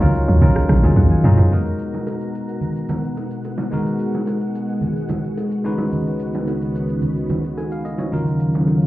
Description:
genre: amapiano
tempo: 109 BPM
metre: 4/4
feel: straight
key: G# dorian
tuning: A4 = 440 Hz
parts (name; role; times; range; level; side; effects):
- barky tine electric piano; accompaniment; 0.0-8.9 s; F#3 to A#5; -24 LUFS; left 2 dB; none
- ensemble organ-string; sustained chords; 0.0-8.9 s; C#2 to A#4; -23 LUFS; right 1 dB; ensemble chorus, sidechain pumping
- woody log drum bass; bass; 0.0-1.4 s; A#1 to F#2; -14 LUFS; equal; none
- smooth R&B drum kit; drums; 0.0-8.9 s; hi-hat, kick drum, rim click, shaker, toms; -16 LUFS; equal; none
- bongos and congas; percussion; 0.4-8.8 s; none; -27 LUFS; right 2 dB; none
room: light reverb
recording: heard muffled through a wall, club reverb, EQ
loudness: -17 LUFS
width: side -16 dB against mid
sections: 0.0-1.5 A section; 1.5-8.9 B section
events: drop 0.0-1.5; tine electric piano fill 0.4-1.5; drum fill 1.0-1.5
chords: 0.0 D#m9; 1.5 G#m9; 5.6 C#9sus4; 8.1 D#m9

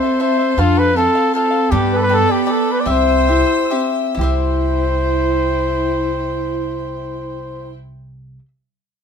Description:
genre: mexican folk, mariachi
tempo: 127-161 BPM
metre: 3/4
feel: straight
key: C major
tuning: A4 = 441 Hz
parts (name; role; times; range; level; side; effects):
- dark trumpet; melody; 0.0-7.7 s; F4 to D5; -19 LUFS; left 1 dB; none
- pure breathy sine lead; second line; 0.0-7.7 s; B3 to E4; -20 LUFS; right 2 dB; chorus
- cavaquinho; accompaniment; 0.0-8.5 s; E4 to F5; -22 LUFS; left 6 dB; none
- clear studio violin section; sustained chords; 0.0-7.7 s; E4 to E6; -30 LUFS; equal; none
- upright bass; bass; 0.6-8.4 s; C2 to G2; -21 LUFS; right 1 dB; none
room: moderate studio reverb, RT60 0.6 s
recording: minimal, uncompressed stereo recording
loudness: -14 LUFS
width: side -7 dB against mid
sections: 0.0-4.2 A section; 4.2-7.0 B section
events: slowing down 1.7-4.2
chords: 0.0 Am/C; 0.6 F; 1.7 Gadd9; 2.9 C

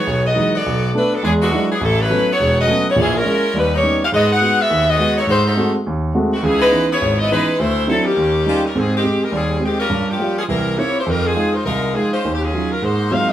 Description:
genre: jazz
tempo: 207 BPM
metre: 4/4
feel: swing 60% on 8ths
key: Ab major from 8.7 s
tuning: A4 = 441 Hz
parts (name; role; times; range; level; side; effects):
- edgy saxophone section; melody; 0.0-13.3 s; D3 to F#5; -17 LUFS; left 1 dB; none
- warm grand piano; accompaniment; 0.1-13.3 s; E1 to G4; -18 LUFS; right 1 dB; none
room: wet studio reverb, RT60 0.6 s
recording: band playing live in one room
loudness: -15 LUFS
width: side -11 dB against mid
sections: 0.0-8.7 A section; 8.7-13.3 B section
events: none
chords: 0.0 Emaj9; 0.6 Bm7; 1.2 E9; 1.8 A69; 3.0 A#m7b5; 3.5 D#7b13; 4.1 G#m7; 5.3 G#7b9; 6.4 C#m9; 7.6 D9; 8.2 D#7; 8.7 Abmaj7; 9.9 Gm7b5; 10.5 C7; 11.1 Fm7; 12.2 Ebm9; 12.8 Ab13

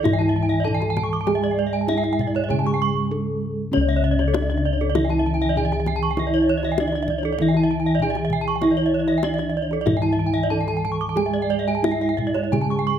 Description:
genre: Balinese gamelan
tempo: 98 BPM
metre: 4/4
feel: straight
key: unclear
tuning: A4 = 440 Hz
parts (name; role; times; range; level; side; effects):
- gamelan-type bronze metallophone; melody; 0.0-13.0 s; C#4 to A4-20c; -25 LUFS; right 2 dB; none
- gamelan-type bronze metallophone; accompaniment; 0.0-13.0 s; C#3 to G#3-30c; -28 LUFS; right 4 dB; none
- gamelan-type bronze metallophone; arpeggios; 0.0-12.8 s; C#5 to C#6; -27 LUFS; left 2 dB; none
- gamelan-type bronze metallophone; arpeggios; 0.0-13.0 s; A4-20c to D6+20c; -27 LUFS; right 9 dB; none
- gamelan-type bossed gongs; bass; 0.0-13.0 s; C#2 to G#4-30c; -24 LUFS; left 3 dB; none
- kendang; percussion; 0.1-12.8 s; none; -29 LUFS; left 4 dB; none
room: light reverb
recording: close, detailed microphones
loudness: -19 LUFS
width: side -9 dB against mid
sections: 0.0-13.0 A section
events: break 2.8-3.7; drum fill 3.0-3.7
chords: none

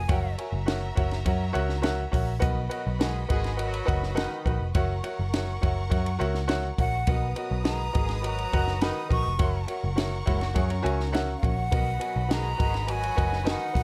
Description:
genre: uptempo 1960s-style soul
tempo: 103 BPM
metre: 4/4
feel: straight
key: B major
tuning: A4 = 439 Hz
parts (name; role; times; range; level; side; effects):
- breathy jazz flute; melody; 0.0-0.3, 6.8-13.8 s; E#5 to C#6; -34 LUFS; equal; none
- rich studio string section; second line; 0.0-13.8 s; F#4 to D#6; -42 LUFS; equal; none
- vintage muted picked electric bass; bass; 0.0-13.8 s; E#1 to F#2; -31 LUFS; equal; none
- warm baby grand piano; accompaniment; 0.1-13.8 s; B2 to G#5; -34 LUFS; equal; none
- compact cocktail drum kit; drums; 0.1-13.8 s; hi-hat, kick drum, ride cymbal, snare drum; -31 LUFS; equal; none
- clear horn section; second line; 2.7-13.8 s; D#3 to G#4; -40 LUFS; equal; none
- electric guitar through a small old amp; riff; 10.3-11.5 s; G#3 to A#4; -39 LUFS; equal; none
room: little or no reverb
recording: dark, warm production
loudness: -27 LUFS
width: mono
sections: 0.0-13.8 A section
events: none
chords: 0.1 F#7; 2.4 Bmaj7; 4.8 F#7; 7.1 Bmaj7; 9.4 F#7; 11.7 Bmaj7

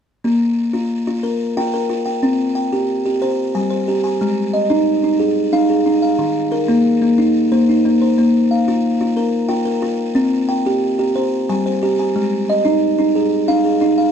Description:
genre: southern african traditional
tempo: 121 BPM (dotted quarters)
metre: 12/8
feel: straight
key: unclear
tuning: A4 = 440 Hz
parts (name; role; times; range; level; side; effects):
- buzzing kalimba; solo; 0.2-14.1 s; Eb3 to Ab5; -14 LUFS; equal; none
room: light reverb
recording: dark, warm production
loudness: -14 LUFS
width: side -8 dB against mid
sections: 0.3-14.1 A section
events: none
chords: 0.3 Bb5; 2.2 C5; 4.2 Ab5; 6.2 Eb5; 8.2 Bb5; 10.2 C5; 12.2 Ab5

